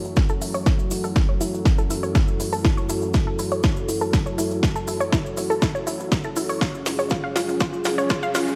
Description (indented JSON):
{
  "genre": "melodic techno",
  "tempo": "121 BPM",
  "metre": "4/4",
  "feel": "straight",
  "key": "F# minor",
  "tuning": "A4 = 441 Hz",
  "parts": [
    { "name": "dark analog pad", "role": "sustained chords", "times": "0.0-8.6 s", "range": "C#4 to A4", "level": "-31 LUFS", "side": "equal", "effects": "chorus, sidechain pumping" },
    { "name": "tight sequencer bass", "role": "bass", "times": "0.0-8.6 s", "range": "F#1 to C#2", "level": "-41 LUFS", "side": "equal", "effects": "none" },
    { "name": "analog drone", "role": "drone", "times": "0.0-8.6 s", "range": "F#2 to F#3", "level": "-35 LUFS", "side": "equal", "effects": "chorus, sidechain pumping" },
    { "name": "cabasa", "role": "percussion", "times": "0.0-8.6 s", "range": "none", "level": "-40 LUFS", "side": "equal", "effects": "none" },
    { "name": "unison pluck", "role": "arpeggios", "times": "0.2-8.4 s", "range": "E4 to E#5", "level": "-30 LUFS", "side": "equal", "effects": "vintage 12-bit sampler grit, sidechain pumping, digital delay" },
    { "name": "electronic kick drum", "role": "drums", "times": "0.2-8.2 s", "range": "none", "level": "-23 LUFS", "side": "equal", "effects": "overdrive, small room ambience" },
    { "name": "techno drum kit", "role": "drums", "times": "0.2-8.5 s", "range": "hi-hat, snare drum", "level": "-33 LUFS", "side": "equal", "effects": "overdrive, sidechain pumping on hats, high-pass filter on hats, small room ambience, high-pass filter on snare" },
    { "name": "riser", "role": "sound effects", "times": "7.8-8.6 s", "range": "none", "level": "-45 LUFS", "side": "equal", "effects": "none" }
  ],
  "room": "light reverb, digital ambience",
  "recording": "dark, warm production, high-pass filter",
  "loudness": "-22 LUFS",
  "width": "mono",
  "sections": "0.0-8.6 A section",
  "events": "build-up 0.0-8.6; drum fill 0.0-8.6; filter sweep on synth arpeggio sound 0.0-8.6; filter sweep 0.0-8.6",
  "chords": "0.0 F#m7; 6.6 C#"
}